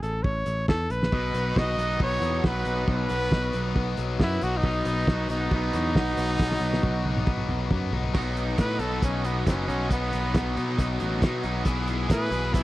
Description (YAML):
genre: indie rock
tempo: 137 BPM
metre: 4/4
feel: straight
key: unclear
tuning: A4 = 440 Hz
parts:
  - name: bright trumpet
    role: melody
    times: 0.0-12.6 s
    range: B3 to D#5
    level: -29 LUFS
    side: equal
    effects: slapback echo
  - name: modern bright picked electric bass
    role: bass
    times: 0.0-12.6 s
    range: F#1 to B2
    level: -29 LUFS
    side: equal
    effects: none
  - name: cloth-damped thuddy drum kit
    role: drums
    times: 0.0-12.6 s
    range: crash cymbal, hi-hat, kick drum, snare drum, toms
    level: -25 LUFS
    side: equal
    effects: none
  - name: biting overdriven guitar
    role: riff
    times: 1.1-12.6 s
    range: F#3 to G#4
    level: -34 LUFS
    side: right 7 dB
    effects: ensemble chorus, slapback echo
  - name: distorted electric guitar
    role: riff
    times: 1.1-12.6 s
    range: B2 to G#4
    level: -31 LUFS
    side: left 7 dB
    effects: overdrive
room: little or no reverb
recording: dry, close 1970s-style studio recording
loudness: -23 LUFS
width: side -16 dB against mid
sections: 0.0-8.2 A section; 8.2-12.6 B section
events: drum fill 6.4-8.2; trumpet solo 8.2-12.6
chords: 0.0 A; 1.1 B; 11.7 E